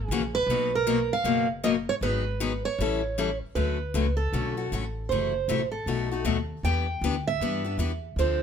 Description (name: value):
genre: acoustic string swing (jazz manouche)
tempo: 156 BPM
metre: 4/4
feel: swing 62% on 8ths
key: D major from 3.6 s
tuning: A4 = 438 Hz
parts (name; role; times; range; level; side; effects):
- picked steel-string acoustic guitar; melody; 0.0-8.4 s; A4 to G5; -28 LUFS; right 5 dB; none
- upright bass; bass; 0.0-8.4 s; F#1 to G2; -30 LUFS; equal; none
- picked steel-string acoustic guitar; accompaniment; 0.1-8.4 s; B2 to A4; -28 LUFS; left 8 dB; none
room: moderate studio reverb, RT60 0.7 s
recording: minimal, uncompressed stereo recording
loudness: -24 LUFS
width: side -7 dB against mid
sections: 0.0-3.6 A section; 3.6-8.4 B section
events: steel-string acoustic guitar solo 3.6-8.4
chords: 0.5 Bmaj7; 2.0 G#m7; 2.8 A7; 3.6 Dmaj7; 5.1 F#m7b5; 5.9 B7; 6.6 Em7